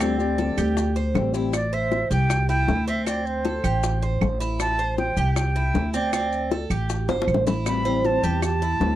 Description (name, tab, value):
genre	latin, Cuban son and guajira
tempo	157 BPM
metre	4/4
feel	straight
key	unclear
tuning	A4 = 441 Hz
part	jazz flute	melody	0.0-9.0 s	C5 to B5	-27 LUFS	equal	none
part	flamenco guitar	accompaniment	0.0-1.5, 7.7-9.0 s	D3 to G4	-27 LUFS	left 6 dB	none
part	Cuban tres	arpeggios	0.0-9.0 s	C4 to C5	-27 LUFS	right 4 dB	none
part	upright bass	bass	0.0-9.0 s	G1 to E2	-24 LUFS	equal	none
part	bongos	percussion	0.0-9.0 s	none	-29 LUFS	left 5 dB	none
part	claves	percussion	0.0-8.6 s	none	-34 LUFS	right 20 dB	none
part	maracas	percussion	0.0-9.0 s	none	-40 LUFS	left 14 dB	none
room	light reverb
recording	dry, close 1970s-style studio recording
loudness	-21 LUFS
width	side -13 dB against mid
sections	0.0-1.5 A section; 1.5-9.0 A section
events	drum fill 7.1-7.7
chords	0.0 Am7; 6.1 D7sus4; 7.7 Am7